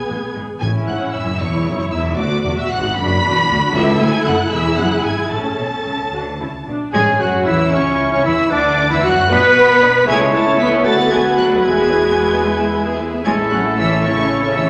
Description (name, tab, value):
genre	quick classical-period movement for symphony orchestra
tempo	76 BPM (dotted quarters)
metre	6/8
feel	uneven beats, rubato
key	A major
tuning	A4 = 440 Hz
part	warm studio violin section	melody	0.0-14.6 s	C#6 to B6	-28 LUFS	equal	none
part	warm studio violin section	second line	0.0-14.7 s	C#4 to B5	-26 LUFS	equal	none
part	dark studio viola section	accompaniment	0.0-14.7 s	G#3 to B4	-23 LUFS	equal	none
part	rich studio double bass section	bass	0.1-14.7 s	E1 to B2	-27 LUFS	equal	none
part	warm studio cello section	bass	0.1-14.7 s	C#2 to B3	-24 LUFS	equal	none
part	timpani	percussion	0.6-1.4, 7.0-7.7 s	A2	-27 LUFS	equal	none
part	clear oboe	second line	6.9-14.7 s	A4 to B5	-23 LUFS	equal	none
part	mellow clarinet	second line	6.9-14.7 s	C#4 to B4	-22 LUFS	equal	none
part	silver concert flute	second line	6.9-14.7 s	C#5 to B5	-27 LUFS	equal	none
part	dark bassoon	accompaniment	6.9-14.7 s	B3 to F#4	-25 LUFS	equal	none
part	mellow French horn section	sustained chords	6.9-14.7 s	C#4 to B4	-24 LUFS	equal	none
room	wet recital hall reverb, RT60 1.7 s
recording	nothing above 10.6 kHz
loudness	-16 LUFS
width	mono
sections	0.0-7.0 A section; 7.0-14.7 A section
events	none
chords	0.0 E (rootless); 0.6 A; 2.2 Bm; 3.8 A/C#; 4.5 E; 5.3 A; 7.0 C#madd11; 8.5 Bm/D; 10.1 A/C#; 10.8 Bm7/D; 11.6 E; 13.3 A